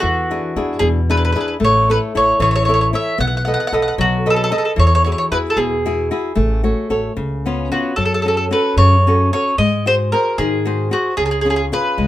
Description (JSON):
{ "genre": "italian folk, Italian serenade", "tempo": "75 BPM (dotted quarters)", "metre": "6/8", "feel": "straight", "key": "A major, F# harmonic minor from 8.0 s", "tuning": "A4 = 440 Hz", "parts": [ { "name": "mandolin", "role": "melody", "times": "0.0-12.1 s", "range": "F#4 to F#5", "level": "-17 LUFS", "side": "equal", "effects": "none" }, { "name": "flamenco guitar", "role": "accompaniment", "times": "0.0-12.1 s", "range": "B2 to D#5", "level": "-19 LUFS", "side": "left 2 dB", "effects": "none" }, { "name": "upright bass", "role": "bass", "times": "0.0-12.1 s", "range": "A1 to G#2", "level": "-19 LUFS", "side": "equal", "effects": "none" } ], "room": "light reverb", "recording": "minimal, uncompressed stereo recording", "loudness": "-14 LUFS", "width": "side -14 dB against mid", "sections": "0.0-8.0 A section; 8.0-12.1 B section", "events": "none", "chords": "0.0 E7; 1.6 A; 3.2 B7; 4.8 Eadd9; 6.4 A6; 7.2 C#7; 8.0 F#m; 9.6 G#7; 11.2 C#" }